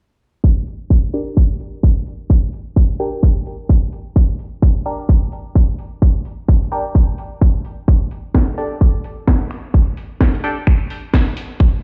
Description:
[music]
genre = bass house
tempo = 129 BPM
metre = 4/4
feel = swing 61% on 16ths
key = G minor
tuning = A4 = 439 Hz
[part]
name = electronic kick drum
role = drums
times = 0.4-11.7 s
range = none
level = -15 LUFS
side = equal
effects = studio ambience
[part]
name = garage drum kit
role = drums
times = 0.7-11.5 s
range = finger snaps, hi-hat, snare drum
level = -26 LUFS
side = equal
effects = studio ambience
[part]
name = band-passed chord stab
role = stabs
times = 1.1-10.6 s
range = D4 to G5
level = -28 LUFS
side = equal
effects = phaser, sidechain pumping, delay
[sound]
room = digital ambience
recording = played on a big sound system in a bare room, large studio reverb, low-pass filter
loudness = -17 LUFS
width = mono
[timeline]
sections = 0.4-11.8 A section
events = filter sweep on synth stab 0.4-11.8; filter sweep 0.4-11.8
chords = 0.4 Gm; 7.9 Dsus4

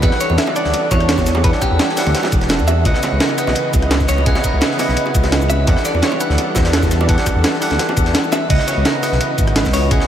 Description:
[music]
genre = liquid drum and bass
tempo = 170 BPM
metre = 4/4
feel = straight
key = unclear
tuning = A4 = 439 Hz
[part]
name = clean electric guitar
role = melody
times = 0.0-10.1 s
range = G4 to E5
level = -23 LUFS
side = equal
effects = wide subtle chorus, ping-pong delay
[part]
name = bell-like tine electric piano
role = accompaniment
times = 0.0-10.1 s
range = C#3 to F#5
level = -22 LUFS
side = equal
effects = ping-pong delay
[part]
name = lush unison pad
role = sustained chords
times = 0.0-10.1 s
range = E3 to F#5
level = -24 LUFS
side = equal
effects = chorus, sidechain pumping
[part]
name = swelling detuned saw bass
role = bass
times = 0.0-10.0 s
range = E1 to E2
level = -17 LUFS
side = equal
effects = tube saturation
[part]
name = breakbeat sampler-style drum kit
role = drums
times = 0.0-10.1 s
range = crash cymbal, hi-hat, rim click, shaker, snare drum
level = -21 LUFS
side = right 1 dB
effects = studio reverb
[part]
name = crunchy breakbeat drum kit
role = drums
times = 0.0-10.1 s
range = ride cymbal, snare drum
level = -26 LUFS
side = equal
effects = high-pass filter on cymbals, studio reverb, high-pass filter on snare, high-pass filter on room
[part]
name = electronic kick drum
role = drums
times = 0.0-10.0 s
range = none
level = -18 LUFS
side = equal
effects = studio reverb
[part]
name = bongos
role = percussion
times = 0.0-8.4 s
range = none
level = -27 LUFS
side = right 3 dB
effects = none
[sound]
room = moderate cathedral reverb, RT60 5.8 s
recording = dreamy mix soaked in reverb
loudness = -13 LUFS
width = side -10 dB against mid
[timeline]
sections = 0.0-8.5 A section; 8.5-10.1 A section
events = drop 0.0-8.5, 8.5-10.1; drum fill 8.3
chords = 0.0 Em11; 2.9 C#m11; 5.7 Em11; 8.5 C#m11

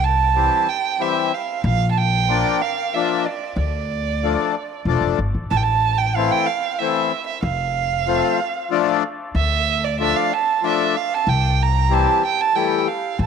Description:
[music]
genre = klezmer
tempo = 93 BPM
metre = 3/4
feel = straight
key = D minor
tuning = A4 = 441 Hz
[part]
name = dark violin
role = melody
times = 0.0-13.3 s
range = D5 to Bb5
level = -20 LUFS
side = right 8 dB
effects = none
[part]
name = upright bass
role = bass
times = 0.0-13.3 s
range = E1 to D2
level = -20 LUFS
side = left 1 dB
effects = none
[part]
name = accordion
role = accompaniment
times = 0.4-12.9 s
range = E3 to D4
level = -22 LUFS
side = left 12 dB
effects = none
[sound]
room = moderate spring reverb, RT60 2.7 s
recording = 1960s-style stereo with parts hard left and right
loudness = -17 LUFS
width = side -6 dB against mid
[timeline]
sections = 0.0-5.5 A section; 5.5-13.3 B section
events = none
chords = 0.0 C; 1.6 Bb; 3.6 Dm; 5.5 Am; 7.4 F; 9.4 Dm; 11.3 C

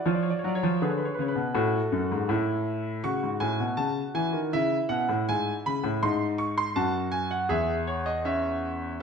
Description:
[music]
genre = classical, baroque-style 3-part fugue for grand piano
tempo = 81 BPM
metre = 4/4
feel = straight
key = unclear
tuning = A4 = 440 Hz
[part]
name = clear concert grand piano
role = solo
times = 0.0-9.0 s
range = E2 to C#6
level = -25 LUFS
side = equal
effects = none
[sound]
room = wet stone room reverb, RT60 1.3 s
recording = none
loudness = -25 LUFS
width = side -6 dB against mid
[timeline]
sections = 0.0-9.0 A section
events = none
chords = 0.1 C#7/E#; 1.6 F#m; 3.0 C#m; 6.0 G#7; 7.5 C#m/E

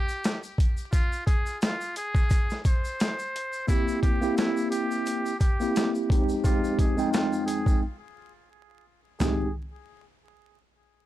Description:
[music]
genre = hip hop, boom-bap hip-hop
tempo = 87 BPM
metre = 4/4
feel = swing 56% on 16ths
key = F minor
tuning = A4 = 440 Hz
[part]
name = trumpet with metal mute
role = melody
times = 0.0-9.5 s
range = E4 to C5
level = -34 LUFS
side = equal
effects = high-pass filter, low-pass filter, ping-pong delay
[part]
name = tube shaker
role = percussion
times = 0.1-9.5 s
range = none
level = -46 LUFS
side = left 3 dB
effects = none
[part]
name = boom bap sampler-style drum kit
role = drums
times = 0.2-9.4 s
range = hi-hat, kick drum, snare drum, toms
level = -24 LUFS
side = equal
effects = none
[part]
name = mellow tine electric piano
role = accompaniment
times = 3.7-9.5 s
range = F2 to G5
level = -26 LUFS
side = equal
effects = medium stereo tremolo, high-pass filter, low-pass filter
[sound]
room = light reverb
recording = vinyl crackle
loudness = -24 LUFS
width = side -14 dB against mid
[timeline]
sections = 0.0-9.2 A section; 9.2-11.1 B section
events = break 0.0-3.7, 7.8-9.2; filter sweep 0.0-9.2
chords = 0.0 N.C.; 3.7 C7; 6.1 Fm7

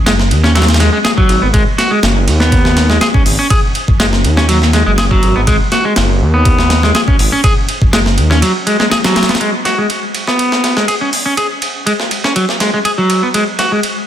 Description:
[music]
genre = breakbeat, breaks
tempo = 122 BPM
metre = 4/4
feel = straight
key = G# minor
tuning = A4 = 443 Hz
[part]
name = dark detuned saw bass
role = bass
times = 0.0-8.4 s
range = F#1 to D#2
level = -13 LUFS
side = equal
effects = none
[part]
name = electric guitar at the edge of break-up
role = riff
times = 0.1-13.8 s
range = F#3 to G#4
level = -14 LUFS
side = equal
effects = low-pass filter, digital delay
[part]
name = breakbeat sampler-style drum kit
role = drums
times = 0.1-14.0 s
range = hi-hat, kick drum, ride cymbal, snare drum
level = -14 LUFS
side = equal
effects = overdrive, high-pass filter on kick, high-pass filter on snare, high-pass filter on cymbals, high-pass filter on hats, high-pass filter on room
[sound]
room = light reverb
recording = dense, heavily limited modern master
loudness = -10 LUFS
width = side -10 dB against mid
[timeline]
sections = 0.0-9.4 A section; 9.4-14.1 B section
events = none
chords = 0.0 G#m7

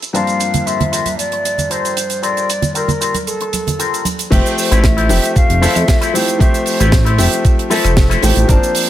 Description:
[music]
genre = nu-disco, nu disco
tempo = 115 BPM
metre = 4/4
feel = straight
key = F major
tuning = A4 = 436 Hz
[part]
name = clear grand piano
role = accompaniment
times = 0.0-8.9 s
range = G2 to A5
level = -19 LUFS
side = left 2 dB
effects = none
[part]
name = tight funk drum kit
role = drums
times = 0.0-8.9 s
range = cabasa, crash cymbal, hi-hat, rim click, snare drum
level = -20 LUFS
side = right 4 dB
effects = none
[part]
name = hollow concert flute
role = melody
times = 0.1-8.9 s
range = A4 to F5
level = -21 LUFS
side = equal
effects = ping-pong delay
[part]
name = electric guitar with an envelope filter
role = riff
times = 0.1-8.5 s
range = E4 to G5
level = -22 LUFS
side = left 6 dB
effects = wide subtle chorus, low-pass filter
[part]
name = congas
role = percussion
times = 0.5-4.2 s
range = none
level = -21 LUFS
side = right 3 dB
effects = none
[part]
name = chorused synth bass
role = bass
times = 4.3-8.6 s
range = F1 to F2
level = -14 LUFS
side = equal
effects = none
[part]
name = electronic kick drum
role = drums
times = 4.3-8.6 s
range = none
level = -13 LUFS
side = equal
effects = none
[sound]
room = light reverb, small room ambience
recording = none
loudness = -12 LUFS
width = side -12 dB against mid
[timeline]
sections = 0.0-4.3 A section; 4.3-8.9 B section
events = drop 4.3-8.9; clean electric guitar fill 7.4-8.5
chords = 0.1 Gm11; 4.3 Fmaj7

